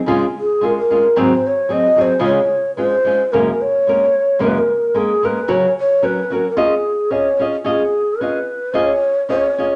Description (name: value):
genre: mexican folk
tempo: 111 BPM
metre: 2/4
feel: straight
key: Db major, F# major from 3.3 s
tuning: A4 = 440 Hz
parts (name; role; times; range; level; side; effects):
- nylon-string guitar; accompaniment; 0.1-9.7 s; F#2 to D#5; -21 LUFS; equal; none
- breathy mellow long shakuhachi; melody; 0.4-9.8 s; G#4 to Eb5; -18 LUFS; equal; none
room: wet large studio reverb, RT60 0.9 s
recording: nothing above 10.7 kHz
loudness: -16 LUFS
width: mono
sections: 0.0-3.3 A section; 3.3-9.8 B section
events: none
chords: 0.1 Db; 1.1 Ab7; 2.2 Db; 3.3 F#add9; 5.5 F#/C#; 6.6 C#add9